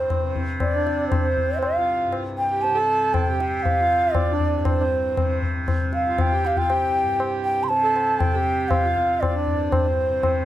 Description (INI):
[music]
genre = indian classical, Hindustani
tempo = 118 BPM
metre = 5/4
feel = straight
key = C raga durga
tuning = A4 = 440 Hz
[part]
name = hollow bansuri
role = melody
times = 0.0-10.4 s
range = C5 to C6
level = -22 LUFS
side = equal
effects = none
[part]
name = hand-pumped harmonium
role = second line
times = 0.0-10.4 s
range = C4 to A4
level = -28 LUFS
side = right 5 dB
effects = none
[part]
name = tanpura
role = drone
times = 0.0-10.4 s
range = C2 to C3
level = -30 LUFS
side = right 1 dB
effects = none
[part]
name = tabla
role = percussion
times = 0.1-10.4 s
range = none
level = -24 LUFS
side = left 2 dB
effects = none
[sound]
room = moderate studio ambience, RT60 0.5 s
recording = none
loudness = -19 LUFS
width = side -13 dB against mid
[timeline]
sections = 0.0-10.4 A section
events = none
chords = none